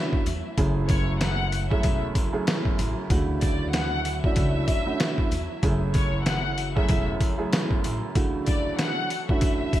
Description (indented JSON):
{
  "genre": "hip hop, boom-bap hip-hop",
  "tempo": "95 BPM",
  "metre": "4/4",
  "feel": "swing 58% on 16ths",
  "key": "F# minor",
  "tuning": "A4 = 441 Hz",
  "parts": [
    { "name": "rich studio violin section", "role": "melody", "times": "0.0-9.8 s", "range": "C#5 to F#5", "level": "-31 LUFS", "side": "left 2 dB", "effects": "high-pass filter, low-pass filter, digital delay" },
    { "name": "dark upright piano", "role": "accompaniment", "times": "0.0-9.8 s", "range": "F#2 to G#4", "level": "-29 LUFS", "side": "right 3 dB", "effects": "high-pass filter, low-pass filter" },
    { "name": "warm analog pad", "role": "sustained chords", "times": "0.0-9.8 s", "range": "C#3 to E4", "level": "-36 LUFS", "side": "left 1 dB", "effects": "lush chorus, high-pass filter, low-pass filter" },
    { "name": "trip hop sampler-style drum kit", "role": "drums", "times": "0.1-9.8 s", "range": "hi-hat, kick drum, snare drum", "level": "-25 LUFS", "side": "equal", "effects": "gated reverb" },
    { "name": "upright bass", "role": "bass", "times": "0.3-8.0 s", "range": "E1 to E2", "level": "-28 LUFS", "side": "equal", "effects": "none" },
    { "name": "sleigh bells", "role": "percussion", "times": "0.3-9.8 s", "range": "none", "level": "-44 LUFS", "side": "left 3 dB", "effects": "none" }
  ],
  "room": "light reverb, small room ambience",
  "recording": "bright 1980s-style digital production, vinyl crackle",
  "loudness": "-22 LUFS",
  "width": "side -13 dB against mid",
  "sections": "0.0-9.8 A section",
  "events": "none",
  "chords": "0.0 Dmaj9; 0.6 F#m7; 3.1 Dmaj9; 5.6 F#m7; 8.2 Dmaj9"
}